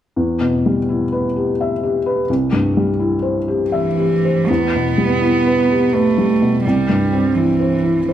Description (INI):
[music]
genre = neoclassical piano and strings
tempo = 84 BPM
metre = 3/4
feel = rubato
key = E minor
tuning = A4 = 445 Hz
[part]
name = felt-muted upright piano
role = accompaniment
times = 0.2-8.1 s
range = C2 to E5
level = -16 LUFS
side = left 1 dB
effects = none
[part]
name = warm cello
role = second line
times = 3.7-8.1 s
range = E3 to B3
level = -17 LUFS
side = right 4 dB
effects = none
[sound]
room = moderate recital hall reverb, RT60 1.3 s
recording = dark, warm production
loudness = -14 LUFS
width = side -11 dB against mid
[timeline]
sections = 0.2-4.5 A section; 4.5-8.1 B section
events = none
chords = 0.2 Em; 2.3 C; 4.5 Em; 6.6 C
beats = | 0.17 0.88 1.58 | 2.28 2.98 3.72 | 4.48 5.21 5.93 | 6.64 7.35 8.07